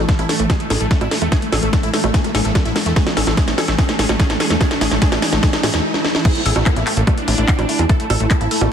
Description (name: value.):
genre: psychedelic trance.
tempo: 146 BPM.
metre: 4/4.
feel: straight.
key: unclear.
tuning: A4 = 440 Hz.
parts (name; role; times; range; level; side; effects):
dense compressed supersaw; melody; 0.0-8.7 s; A3 to A4; -24 LUFS; equal; phaser, sidechain pumping, ping-pong delay.
swarming drone; sustained chords; 0.0-8.7 s; E3 to E4; -25 LUFS; equal; built-in reverb, sidechain pumping.
plucky analog bass; bass; 0.0-8.7 s; A1 to A2; -20 LUFS; equal; none.
riser and downlifter; sound effects; 0.2-8.7 s; none; -27 LUFS; right 1 dB; none.
warbly tape-like pad; texture; 0.0-8.7 s; A3 to A5; -30 LUFS; right 3 dB; none.
woody wave-folded pluck; riff; 0.1-8.7 s; G#3 to Bb4; -28 LUFS; moving between left 5 dB and right 6 dB; chorus, auto-pan, sidechain pumping, ping-pong delay.
electronic kick drum; drums; 0.1-8.4 s; none; -16 LUFS; equal; none.
techno drum kit; drums; 0.1-8.7 s; bongos, crash cymbal, handclaps, hi-hat, snare drum; -20 LUFS; right 1 dB; none.
room: light reverb.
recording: dense, heavily limited modern master.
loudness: -14 LUFS.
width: side -8 dB against mid.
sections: 0.0-6.3 A section; 6.3-8.7 B section.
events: build-up 0.0-6.3; drum fill 0.0-5.8, 5.9-6.3; filter sweep on synth drone 0.0-6.3; stop 5.8-6.3; drop 6.3-8.7.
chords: 0.0 A5.